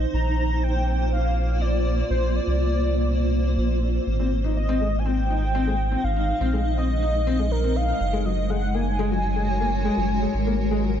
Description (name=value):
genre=IDM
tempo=122 BPM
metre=4/4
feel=straight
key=Ab lydian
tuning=A4 = 440 Hz
part: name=granular cloud pad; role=sustained chords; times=0.0-11.0 s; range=Ab3 to Eb5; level=-27 LUFS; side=equal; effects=built-in reverb
part: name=round analog bass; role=bass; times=0.0-11.0 s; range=Gb1 to C2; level=-24 LUFS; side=equal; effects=none
part: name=warm velvety synth lead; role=melody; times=0.1-11.0 s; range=Bb4 to Bb5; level=-29 LUFS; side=equal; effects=chorus, vintage 12-bit sampler grit, ping-pong delay
part: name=felt-muted upright piano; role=arpeggios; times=4.2-10.9 s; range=Gb3 to Eb4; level=-28 LUFS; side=left 6 dB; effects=digital delay
room=light reverb, digital ambience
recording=dark, warm production, nothing above 7.8 kHz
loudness=-21 LUFS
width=side -9 dB against mid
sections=0.0-11.0 A section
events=none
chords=0.1 Bbadd9; 4.1 Ab; 8.0 Gbadd9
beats=| 0.14 0.63 1.12 1.61 | 2.10 2.60 3.09 3.58 | 4.07 4.56 5.06 5.55 | 6.04 6.53 7.02 7.51 | 8.01 8.50 8.99 9.48 | 9.97 10.47 10.96